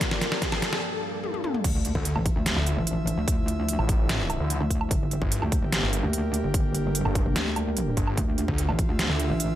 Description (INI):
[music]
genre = heavy wobble dubstep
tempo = 147 BPM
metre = 4/4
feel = half-time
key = D minor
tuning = A4 = 439 Hz
[part]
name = evolving wavetable pad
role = sustained chords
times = 0.0-9.6 s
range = G2 to E5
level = -35 LUFS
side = equal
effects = chorus, built-in reverb, sidechain pumping
[part]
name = dubstep drum kit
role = drums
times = 0.0-9.5 s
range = crash cymbal, hi-hat, snare drum, toms, woodblock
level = -28 LUFS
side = right 1 dB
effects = studio reverb
[part]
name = electronic kick drum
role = drums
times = 0.0-8.9 s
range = none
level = -27 LUFS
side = equal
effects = studio reverb
[part]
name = riser and sub drop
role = sound effects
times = 0.0-3.3 s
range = none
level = -34 LUFS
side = equal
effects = none
[part]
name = airy breathy pad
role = texture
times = 0.0-9.6 s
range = F3 to A5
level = -35 LUFS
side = left 1 dB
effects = chorus, sidechain pumping
[part]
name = metallic wobble bass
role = bass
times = 1.6-9.6 s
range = F1 to D2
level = -27 LUFS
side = equal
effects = distortion, chorus, overdrive
[part]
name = snarling distorted saw bass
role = bass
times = 2.0-9.3 s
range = G1 to D2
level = -26 LUFS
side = equal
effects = distortion, overdrive
[sound]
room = little or no reverb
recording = none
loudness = -23 LUFS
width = side -12 dB against mid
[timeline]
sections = 0.0-1.6 A section; 1.6-9.6 B section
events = build-up 0.0-1.6; drum fill 0.0-0.8, 1.2-1.6; riser 0.0-0.8; break 0.8-1.6; drop 1.6-9.6; impact 1.6-3.3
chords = 0.0 Gmadd9; 1.6 Dmadd9; 4.9 Gmadd9; 8.2 Dmadd9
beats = | 0.01 0.42 0.83 1.24 | 1.64 2.05 2.46 2.87 | 3.28 3.68 4.09 4.50 | 4.91 5.32 5.72 6.13 | 6.54 6.95 7.36 7.77 | 8.17 8.58 8.99 9.40